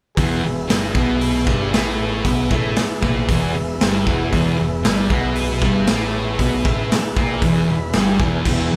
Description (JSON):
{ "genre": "garage rock duo or trio", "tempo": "116 BPM", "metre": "4/4", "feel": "straight", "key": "unclear", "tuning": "A4 = 440 Hz", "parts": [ { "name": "combo organ", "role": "sustained chords", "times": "0.1-8.8 s", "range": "G#4 to B5", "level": "-29 LUFS", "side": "equal", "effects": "none" }, { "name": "thick fuzz guitar", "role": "riff", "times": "0.2-8.8 s", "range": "E2 to B3", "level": "-22 LUFS", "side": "equal", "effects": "distortion" }, { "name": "growling picked electric bass", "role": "bass", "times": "0.2-8.8 s", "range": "E1 to B1", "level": "-29 LUFS", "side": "equal", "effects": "overdrive, tube saturation" }, { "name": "raw garage drum kit", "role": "drums", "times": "0.2-8.6 s", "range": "crash cymbal, hi-hat, kick drum, snare drum", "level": "-23 LUFS", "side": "equal", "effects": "none" } ], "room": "moderate large studio reverb, RT60 0.9 s", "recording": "band playing live in one room", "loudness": "-19 LUFS", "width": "mono", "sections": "0.2-8.8 A section", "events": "transistor combo organ fill 7.4-8.5", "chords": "0.2 E" }